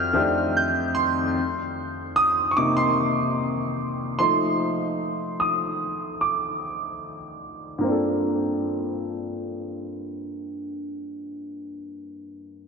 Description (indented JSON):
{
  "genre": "R&B",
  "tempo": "74 BPM",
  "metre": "4/4",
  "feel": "straight",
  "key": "G minor",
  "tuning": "A4 = 440 Hz",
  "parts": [
    { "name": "soft synth bell", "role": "melody", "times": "0.0-1.1 s", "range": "F6 to G6", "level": "-26 LUFS", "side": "equal", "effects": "chorus, ping-pong delay" },
    { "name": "warm grand piano", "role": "accompaniment", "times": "0.0-12.7 s", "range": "F2 to Eb6", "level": "-23 LUFS", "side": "equal", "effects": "lush chorus" }
  ],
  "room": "wet cathedral reverb, RT60 4.7 s",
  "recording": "dreamy mix soaked in reverb, low-pass filter",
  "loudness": "-22 LUFS",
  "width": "side -5 dB against mid",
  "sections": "0.0-1.4 A section; 1.4-7.8 B section; 7.8-11.1 C section",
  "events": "grand piano solo 1.4-7.8; filter sweep 1.4-7.8",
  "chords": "0.0 F13; 1.4 Cm7; 4.2 F6; 7.8 Gm11"
}